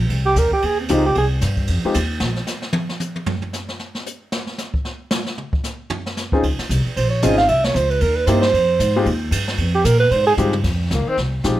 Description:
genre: jazz, small-group swing and bop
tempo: 228 BPM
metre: 4/4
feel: swing 59% on 8ths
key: F minor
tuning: A4 = 440 Hz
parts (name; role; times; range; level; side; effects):
- upright bass; bass; 0.0-2.4, 6.3-11.6 s; Ab1 to Bb2; -20 LUFS; equal; none
- jazz brush drum kit; drums; 0.1-11.6 s; brushed snare drum, crash cymbal, hi-hat, kick drum, ride cymbal, snare drum, toms; -24 LUFS; equal; none
- mellow alto saxophone; second line; 0.3-1.3, 7.0-11.2 s; Eb3 to F5; -17 LUFS; right 3 dB; none
- warm baby grand piano; accompaniment; 0.9-1.9, 6.3-11.6 s; Ab3 to Ab4; -20 LUFS; left 3 dB; none
- mellow tenor saxophone; melody; 10.9-11.2 s; Bb3 to C4; -22 LUFS; left 4 dB; none
room: light reverb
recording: none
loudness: -17 LUFS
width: side -14 dB against mid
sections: 0.0-10.6 A section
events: alto saxophone solo 0.0-10.6; drum solo 2.2-6.4; drum fill 10.4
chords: 0.0 Fm7; 2.2 N.C.; 4.3 Fm7; 6.4 Dbmaj7; 7.5 C7#9; 8.5 Fm7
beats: | 0.10 0.36 0.62 0.89 | 1.15 1.42 1.68 1.94 | 2.21 2.47 2.74 3.00 | 3.26 3.53 3.79 4.05 | 4.32 4.58 4.85 5.11 | 5.37 5.64 5.90 6.16 | 6.43 6.69 6.96 7.22 | 7.48 7.75 8.01 8.27 | 8.53 8.80 9.06 9.32 | 9.59 9.85 10.11 10.38 | 10.64 10.90 11.17 11.43

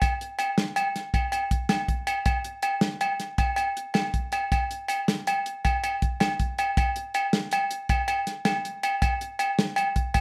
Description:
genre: highlife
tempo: 106 BPM (dotted quarters)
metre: 12/8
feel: straight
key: none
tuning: none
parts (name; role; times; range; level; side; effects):
- warm soul drum kit; drums; 0.0-10.2 s; hi-hat, kick drum, snare drum; -28 LUFS; equal; none
- agogo bells; percussion; 0.0-10.2 s; none; -29 LUFS; equal; none
room: moderate studio reverb, RT60 0.7 s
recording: none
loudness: -26 LUFS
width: mono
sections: 0.0-6.8 A section; 6.8-10.2 B section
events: none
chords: none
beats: | 0.01 0.57 1.14 1.70 | 2.26 2.83 3.39 3.95 | 4.51 5.08 5.64 6.21 | 6.77 7.33 7.90 8.46 | 9.02 9.59 10.15

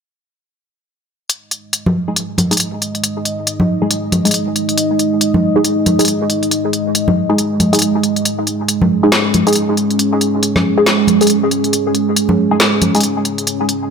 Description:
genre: deep dubstep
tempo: 138 BPM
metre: 4/4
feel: swing 60% on 16ths, half-time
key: unclear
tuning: A4 = 440 Hz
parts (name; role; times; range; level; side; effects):
- deep dark ambient pad; sustained chords; 2.1-13.9 s; G#3 to D#5; -16 LUFS; right 1 dB; chorus, built-in reverb
- deep house drum kit; drums; 1.3-13.8 s; hi-hat, snare drum; -16 LUFS; left 1 dB; none
- congas; percussion; 1.9-12.9 s; none; -18 LUFS; equal; dub echo
- filtered dub chord stab; stabs; 2.1-13.0 s; G#3 to G#4; -18 LUFS; left 1 dB; phaser, wide subtle chorus, cassette tape, dub echo
room: moderate lush hall reverb, RT60 2.1 s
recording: none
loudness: -12 LUFS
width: side -6 dB against mid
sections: 1.3-13.9 A section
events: filter sweep on synth stab 1.3-13.9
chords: 1.3 G#5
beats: | 1.30 1.73 2.17 2.60 | 3.04 3.47 3.90 4.34 | 4.77 5.21 5.64 6.08 | 6.51 6.95 7.38 7.82 | 8.25 8.69 9.12 9.56 | 9.99 10.43 10.86 11.30 | 11.73 12.17 12.60 13.04 | 13.47

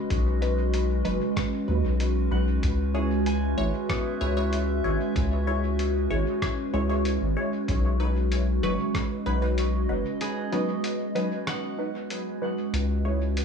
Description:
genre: ambient dub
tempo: 95 BPM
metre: 4/4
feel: straight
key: unclear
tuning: A4 = 440 Hz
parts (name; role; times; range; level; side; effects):
- warbly tape-like pad; sustained chords; 0.0-13.4 s; G#3 to E5; -28 LUFS; right 1 dB; chorus, built-in reverb, phaser
- concert harp; arpeggios; 0.0-13.4 s; B3 to C#6; -39 LUFS; right 2 dB; dub echo
- round analog bass; bass; 0.1-13.4 s; F#1 to D#2; -25 LUFS; left 1 dB; none
- electronic kick drum; drums; 0.1-9.1 s; none; -30 LUFS; equal; studio reverb
- lo-fi sampler-style drum kit; drums; 0.1-13.4 s; hi-hat, rim click; -36 LUFS; left 1 dB; studio reverb, dub echo
- filtered dub chord stab; stabs; 0.4-13.3 s; F#3 to C#5; -32 LUFS; left 1 dB; phaser, dub echo
room: little or no reverb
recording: echo-heavy mix, studio ambience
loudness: -24 LUFS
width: side -6 dB against mid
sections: 0.0-12.7 A section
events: break 10.2-12.7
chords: 0.0 B; 2.6 C#m; 7.7 B; 12.7 C#m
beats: | 0.10 0.74 1.37 2.00 | 2.63 3.26 3.90 4.53 | 5.16 5.79 6.42 7.05 | 7.68 8.32 8.95 9.58 | 10.21 10.84 11.47 12.11 | 12.74 13.37

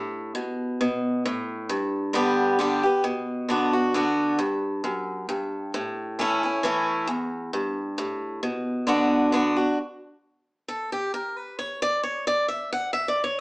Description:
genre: bluegrass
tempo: 134 BPM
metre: 3/4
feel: swing 54% on 8ths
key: B minor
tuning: A4 = 442 Hz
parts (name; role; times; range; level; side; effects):
- picked swing-style acoustic guitar; solo; 0.0-13.4 s; E2 to F#5; -23 LUFS; equal; slapback echo
room: wet large studio reverb, RT60 0.9 s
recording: heard from further back in the room, small speaker sound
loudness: -23 LUFS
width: side -27 dB against mid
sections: 0.0-9.8 A section; 9.8-13.4 B section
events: steel-string acoustic guitar solo 9.8-13.4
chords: 0.4 Asus2; 1.7 G; 3.0 Bm; 4.4 N.C.; 5.7 A; 8.4 Bm; 9.8 N.C.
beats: | 0.35 0.80 1.25 | 1.70 2.15 2.59 | 3.04 3.49 3.94 | 4.39 4.84 5.28 | 5.73 6.18 6.63 | 7.08 7.53 7.98 | 8.43 8.88 9.33 | 9.78 10.23 10.68 | 11.13 11.58 12.03 | 12.48 12.93 13.38

